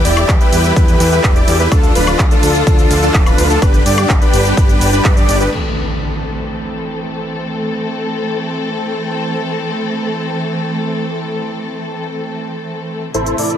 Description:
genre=EDM, festival progressive house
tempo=126 BPM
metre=4/4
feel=straight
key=A minor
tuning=A4 = 440 Hz
part: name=rich studio string section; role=sustained chords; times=0.0-13.6 s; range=C3 to A4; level=-20 LUFS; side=equal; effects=sidechain pumping, low-pass filter
part: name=wide unison lead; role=arpeggios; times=0.0-5.5 s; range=A4 to D5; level=-21 LUFS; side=left 1 dB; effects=sidechain pumping, ping-pong delay
part: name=dense compressed supersaw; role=riff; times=0.0-5.5, 13.1-13.6 s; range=D4 to D5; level=-17 LUFS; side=equal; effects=sidechain pumping, low-pass filter, ping-pong delay
part: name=fat analog bass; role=bass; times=0.1-5.5, 13.1-13.6 s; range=D1 to A2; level=-17 LUFS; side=equal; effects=tube saturation, sidechain pumping
part: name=big-room dance drum kit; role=drums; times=0.1-5.6, 13.1-13.6 s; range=cabasa, crash cymbal, handclaps, hi-hat, ride cymbal, woodblock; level=-22 LUFS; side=equal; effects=overdrive, low-pass filter on hats, low-pass filter on perc, low-pass filter on cymbals, low-pass filter on snare
part: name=electronic kick drum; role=drums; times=0.3-5.1 s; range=none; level=-12 LUFS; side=equal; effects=overdrive
part: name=impact and riser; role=sound effects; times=5.5-7.4, 13.1-13.6 s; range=none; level=-24 LUFS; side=equal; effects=none
room=digital ambience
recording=none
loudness=-12 LUFS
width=side -10 dB against mid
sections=0.0-5.5 A section; 5.5-13.1 B section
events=drop 0.0-5.5; band accent 5.0; impact 5.5-7.4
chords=0.0 Em; 1.7 Dm; 3.6 G; 5.5 Am

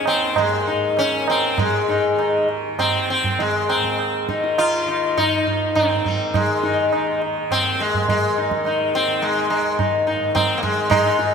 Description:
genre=indian classical, Hindustani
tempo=97-108 BPM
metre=4/4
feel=straight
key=unclear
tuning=A4 = 440 Hz
part: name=sitar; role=melody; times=0.0-11.3 s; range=Ab3 to F4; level=-19 LUFS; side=left 2 dB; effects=analog delay
part: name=tanpura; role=drone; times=0.0-11.3 s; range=Eb2 to Eb3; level=-30 LUFS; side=right 1 dB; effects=none
part: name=tabla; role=percussion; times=0.1-11.3 s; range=none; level=-24 LUFS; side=right 6 dB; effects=none
room=wet lush hall reverb, RT60 2.7 s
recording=dreamy mix soaked in reverb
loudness=-17 LUFS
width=side -6 dB against mid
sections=0.0-1.6 A section; 1.6-10.9 B section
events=speeding up 0.0-11.3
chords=none

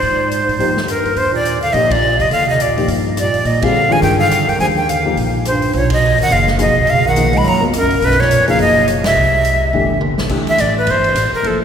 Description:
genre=modal jazz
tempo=210 BPM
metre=4/4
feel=swing 60% on 8ths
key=Eb major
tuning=A4 = 439 Hz
part: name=breathy bright jazz flute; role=melody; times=0.0-11.6 s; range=A4 to B5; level=-14 LUFS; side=equal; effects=none
part: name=mellow bass clarinet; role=second line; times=0.0-10.0 s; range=F#2 to Ab3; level=-20 LUFS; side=right 3 dB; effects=none
part: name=upright bass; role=bass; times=0.0-11.6 s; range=F1 to Bb2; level=-20 LUFS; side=equal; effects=none
part: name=swinging big-band drum kit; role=drums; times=0.0-11.5 s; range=crash cymbal, hi-hat, kick drum, ride cymbal, rim click, snare drum, toms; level=-26 LUFS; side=left 1 dB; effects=none
part: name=dark upright piano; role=accompaniment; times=0.6-11.6 s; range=Eb3 to Bb4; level=-21 LUFS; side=left 3 dB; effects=none
room=wet church reverb, RT60 3.5 s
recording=recorded in a church or concert hall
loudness=-12 LUFS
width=side -8 dB against mid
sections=0.0-1.2 A section; 1.2-10.3 B section; 10.3-11.6 C section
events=band accent 1.9, 3.6, 5.9, 9.0; drum fill 9.7-10.3; flute solo 10.3-11.6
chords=0.0 Abmaj9; 1.2 Ebmaj9; 5.7 Bmaj9; 9.2 C; 10.3 Fmaj9

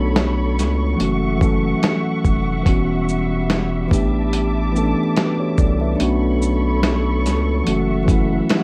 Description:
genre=lo-fi hip hop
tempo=72 BPM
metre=4/4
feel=swing 56% on 16ths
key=unclear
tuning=A4 = 441 Hz
part: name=mellow tine electric piano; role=accompaniment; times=0.0-8.6 s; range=E3 to E5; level=-22 LUFS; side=equal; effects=low-pass filter
part: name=muted studio string section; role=sustained chords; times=0.0-8.6 s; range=G3 to D6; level=-29 LUFS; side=equal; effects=low-pass filter
part: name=saturated sub bass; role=bass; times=0.0-8.4 s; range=E1 to C#2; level=-24 LUFS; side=equal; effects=none
part: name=dusty soul sampler-style drum kit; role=drums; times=0.2-8.6 s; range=hi-hat, kick drum, shaker, snare drum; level=-21 LUFS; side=equal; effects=vintage 12-bit sampler grit
room=light reverb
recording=vinyl crackle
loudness=-19 LUFS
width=mono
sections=0.0-8.6 A section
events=none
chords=0.0 Bm9; 1.0 F#m7; 2.7 Em69; 3.9 A7sus4; 6.0 Bm9; 7.7 F#m7

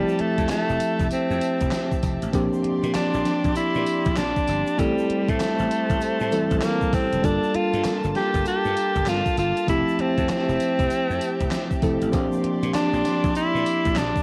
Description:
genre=R&B, new jack swing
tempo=98 BPM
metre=4/4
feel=swing 63% on 16ths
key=unclear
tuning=A4 = 440 Hz
part: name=bright alto saxophone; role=melody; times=0.0-14.2 s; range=G3 to G4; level=-27 LUFS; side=equal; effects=cassette tape
part: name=tine electric piano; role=accompaniment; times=0.0-14.2 s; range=E3 to A4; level=-28 LUFS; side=equal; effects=cassette tape
part: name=warm chamber string section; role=sustained chords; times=0.0-14.2 s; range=Bb3 to C6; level=-35 LUFS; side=equal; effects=cassette tape
part: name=slap bass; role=bass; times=0.0-14.1 s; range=F1 to Bb2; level=-31 LUFS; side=equal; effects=none
part: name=tube shaker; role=percussion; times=0.1-14.2 s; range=none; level=-54 LUFS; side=equal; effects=none
part: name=gated 80s digital drum machine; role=drums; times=0.2-14.2 s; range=handclaps, hi-hat, kick drum, snare drum, tambourine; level=-30 LUFS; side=equal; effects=gated reverb, gated reverb snare, cassette tape
room=light reverb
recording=home recording on cassette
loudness=-23 LUFS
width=mono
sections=0.0-14.2 A section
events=none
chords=0.0 Fmaj9; 2.3 Bb69; 4.8 Am7; 7.2 Gm9; 9.7 Fmaj9; 12.1 Bb69

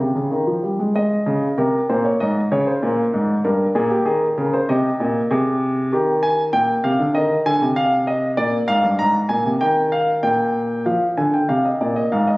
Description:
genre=classical, baroque-style two-part invention for grand piano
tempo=97 BPM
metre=4/4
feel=straight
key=Ab major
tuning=A4 = 440 Hz
part: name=warm grand piano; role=solo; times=0.0-12.4 s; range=G2 to Bb5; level=-16 LUFS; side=equal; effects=none
room=moderate recital hall reverb, RT60 1.7 s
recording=recorded on a phone in the room, studio reverb, compression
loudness=-16 LUFS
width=side -22 dB against mid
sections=1.0-10.9 A section; 10.9-12.4 B section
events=none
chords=0.0 Ab; 2.2 Bbm7/Ab; 3.4 Eb/G; 4.7 Ab; 5.9 Eb; 7.1 Fm7; 8.4 Bb; 9.6 Eb; 10.9 Fm

